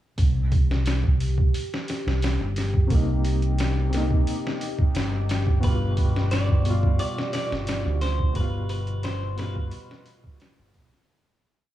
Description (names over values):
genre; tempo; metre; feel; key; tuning
trip hop; 88 BPM; 4/4; straight; C minor; A4 = 438 Hz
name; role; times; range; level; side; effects
warbly tape-like pad; sustained chords; 0.2-11.1 s; G4; -36 LUFS; right 1 dB; chorus, built-in reverb, phaser
deep dub fingered electric bass; bass; 0.2-10.9 s; G1 to D2; -24 LUFS; equal; none
trip hop sampler-style drum kit; drums; 0.2-11.1 s; hi-hat, kick drum, snare drum; -25 LUFS; right 1 dB; none
warm upright piano; accompaniment; 2.9-11.1 s; B2 to F4; -31 LUFS; left 1 dB; tremolo, vintage 12-bit sampler grit, tape echo
clean electric guitar; melody; 5.6-10.7 s; B4 to D5; -33 LUFS; right 1 dB; spring reverb, tape echo
room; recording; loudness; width
digital ambience; vinyl crackle; -21 LUFS; side -13 dB against mid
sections
0.2-11.1 groove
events
fade-out 7.5-11.1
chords
0.2 Cm7; 5.6 G7